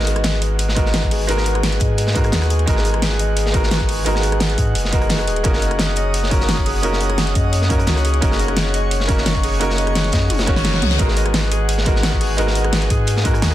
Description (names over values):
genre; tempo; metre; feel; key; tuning
liquid drum and bass; 173 BPM; 4/4; straight; G# minor; A4 = 440 Hz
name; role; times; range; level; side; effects
bright baby grand piano; accompaniment; 0.0-13.5 s; G#3 to C#5; -23 LUFS; right 1 dB; ping-pong delay
airy breathy pad; sustained chords; 0.0-13.5 s; G#4 to D#6; -28 LUFS; right 2 dB; chorus
concert harp; arpeggios; 0.0-13.5 s; F#4 to D#5; -27 LUFS; left 4 dB; low-pass filter, ping-pong delay
warm sub bass; bass; 0.0-13.5 s; D#1 to G#2; -20 LUFS; equal; none
crunchy breakbeat drum kit; drums; 0.0-13.5 s; hi-hat, snare drum; -26 LUFS; equal; high-pass filter on hats, high-pass filter on snare, high-pass filter on room
pop drum kit; drums; 0.1-13.5 s; hi-hat, rim click, snare drum, toms; -23 LUFS; equal; none
electronic kick drum; drums; 0.8-13.3 s; none; -20 LUFS; equal; none
reverse cymbal; sound effects; 10.5-11.0 s; none; -29 LUFS; left 6 dB; none
room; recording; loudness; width
light reverb, small room ambience; dense, heavily limited modern master; -15 LUFS; side -13 dB against mid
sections
0.0-13.5 A section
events
filter sweep on harp 0.0-13.5; drum fill 10.3-11.0; reverse cymbal 10.5-11.0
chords
0.0 G#m7; 5.4 D#m7/F#; 11.0 G#m7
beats
0.25 0.59 0.94 | 1.29 1.63 1.98 2.33 | 2.67 3.02 3.37 3.71 | 4.06 4.41 4.75 5.10 | 5.45 5.79 6.14 6.49 | 6.83 7.18 7.53 7.88 | 8.22 8.57 8.92 9.26 | 9.61 9.96 10.30 10.65 | 11.00 11.34 11.69 12.04 | 12.38 12.73 13.08 13.43